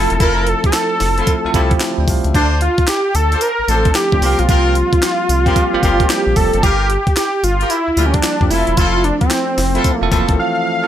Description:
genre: R&B, new jack swing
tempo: 112 BPM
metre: 4/4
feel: swing 64% on 16ths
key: unclear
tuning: A4 = 443 Hz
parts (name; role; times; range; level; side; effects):
- wide unison lead; melody; 0.0-10.9 s; C4 to F5; -17 LUFS; equal; digital delay
- bell-like tine electric piano; accompaniment; 0.0-10.9 s; E3 to G5; -21 LUFS; right 2 dB; medium stereo tremolo
- clear horn section; stabs; 0.0-10.3 s; C4 to C5; -22 LUFS; left 2 dB; none
- round analog bass; bass; 0.0-10.4 s; E1 to F2; -18 LUFS; equal; none
- breakbeat sampler-style drum kit; drums; 0.1-10.4 s; handclaps, hi-hat, kick drum, snare drum, tambourine; -17 LUFS; equal; none
room: little or no reverb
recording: none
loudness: -12 LUFS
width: side -11 dB against mid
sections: 0.0-10.9 A section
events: silent gap 10.4-10.9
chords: 0.0 Fmaj7; 2.3 Dm7; 4.2 C7sus4; 6.6 Gm7; 8.5 Fmaj7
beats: | 0.20 0.74 1.27 1.81 | 2.35 2.88 3.42 3.95 | 4.49 5.02 5.56 6.09 | 6.63 7.17 7.70 8.24 | 8.77 9.31 9.85 10.38

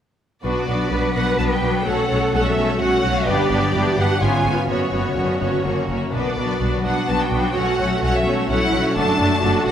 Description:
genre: classical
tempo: 127 BPM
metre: 3/4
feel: straight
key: B minor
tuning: A4 = 439 Hz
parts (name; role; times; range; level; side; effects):
- rich symphonic violin section; melody; 0.4-9.7 s; C#5 to A5; -24 LUFS; left 1 dB; none
- warm symphonic violin section; second line; 0.4-9.7 s; E#4 to C#5; -26 LUFS; left 1 dB; none
- rich symphonic viola section; accompaniment; 0.4-9.7 s; A3 to D4; -25 LUFS; right 2 dB; none
- concert harp; arpeggios; 0.4-9.7 s; F#2 to B4; -25 LUFS; left 5 dB; none
- clear symphonic double bass section; bass; 0.4-9.7 s; F#1 to B1; -25 LUFS; right 2 dB; none
- rich symphonic cello section; bass; 0.4-9.7 s; D4 to B4; -24 LUFS; right 2 dB; none
room: wet recital hall reverb, RT60 1.4 s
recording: none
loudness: -17 LUFS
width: side -9 dB against mid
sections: 0.4-9.7 A section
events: none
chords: 0.4 Bm; 1.9 F#m/B; 3.3 G; 4.2 C#7/G#; 4.7 F#sus4; 5.7 F#; 6.1 Bm; 7.6 F#m/B; 9.0 D/F#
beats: | 0.44 0.91 1.39 | 1.87 2.34 2.81 | 3.28 3.74 4.21 | 4.69 5.17 5.65 | 6.13 6.61 7.09 | 7.56 8.03 8.50 | 8.96 9.43

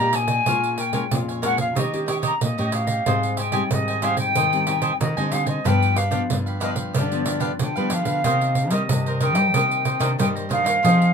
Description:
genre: samba and choro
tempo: 92 BPM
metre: 4/4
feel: straight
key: C minor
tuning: A4 = 440 Hz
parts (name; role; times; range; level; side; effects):
- concert flute; melody; 0.0-11.1 s; D5 to Bb5; -23 LUFS; equal; none
- cavaquinho; accompaniment; 0.0-11.1 s; D4 to Ab5; -27 LUFS; right 2 dB; none
- nylon-string guitar; accompaniment; 0.0-11.1 s; F2 to Ab4; -28 LUFS; left 4 dB; none
- nylon-string guitar; bass; 0.0-11.1 s; G2 to G3; -25 LUFS; equal; none
- pandeiro; percussion; 0.1-11.1 s; none; -26 LUFS; right 4 dB; none
room: moderate booth ambience, RT60 0.2 s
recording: minimal, uncompressed stereo recording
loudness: -19 LUFS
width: side -6 dB against mid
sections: 0.0-8.2 A section; 8.2-11.1 B section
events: none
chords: 0.5 Bbm7; 1.8 Eb7; 3.1 Abmaj7; 5.7 G7; 8.2 Cm9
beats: | 0.46 1.11 1.76 2.41 | 3.06 3.71 4.36 5.00 | 5.65 6.30 6.95 7.60 | 8.24 8.89 9.54 10.19 | 10.83

